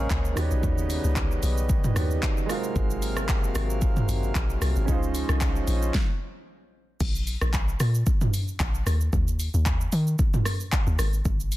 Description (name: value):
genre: amapiano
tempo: 113 BPM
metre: 4/4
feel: swing 55% on 16ths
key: Db major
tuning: A4 = 440 Hz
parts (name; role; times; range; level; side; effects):
- warm concert grand piano; accompaniment; 0.0-6.0 s; Bb2 to Db5; -33 LUFS; right 6 dB; none
- pedal harmonium; sustained chords; 0.0-5.9 s; C3 to F5; -33 LUFS; left 1 dB; sidechain pumping
- deep log drum bass; bass; 0.0-11.6 s; Ab1 to Eb3; -25 LUFS; equal; none
- deep house drum kit; drums; 0.1-11.6 s; crash cymbal, handclaps, hi-hat, kick drum, rim click, shaker, snare drum, toms; -25 LUFS; equal; none
room: little or no reverb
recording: dense, heavily limited modern master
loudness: -22 LUFS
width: side -16 dB against mid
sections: 0.0-7.0 A section; 7.0-11.6 B section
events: stop 5.9-7.0; drop 7.0-11.6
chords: 0.4 Eb7alt; 2.5 Ab13; 4.9 Dbmaj9; 7.0 N.C.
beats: 0.10 | 0.63 1.17 1.70 2.23 | 2.76 3.29 3.82 4.35 | 4.88 5.41 5.94 6.47 | 7.01 7.54 8.07 8.60 | 9.13 9.66 10.19 10.72 | 11.25